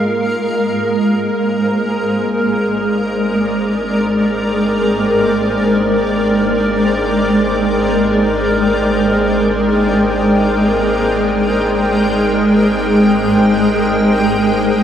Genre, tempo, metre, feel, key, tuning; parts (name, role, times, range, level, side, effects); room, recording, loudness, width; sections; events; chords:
ambient; free time; Ab lydian; A4 = 440 Hz
granular cloud pad; sustained chords; 0.0-14.8 s; Ab3 to G5; -12 LUFS; equal; built-in reverb, shimmer reverb
organ-like drone; drone; 3.1-14.8 s; Ab3 to Eb4; -27 LUFS; left 1 dB
round analog bass; bass; 0.1-14.8 s; Ab1; -30 LUFS; equal
wet cathedral reverb, RT60 5.0 s; in a vast, echoing space; -12 LUFS; side -9 dB against mid
0.0-14.8 A section
fade-in on analog synth bass 0.0-14.8
0.0 Abmaj9#11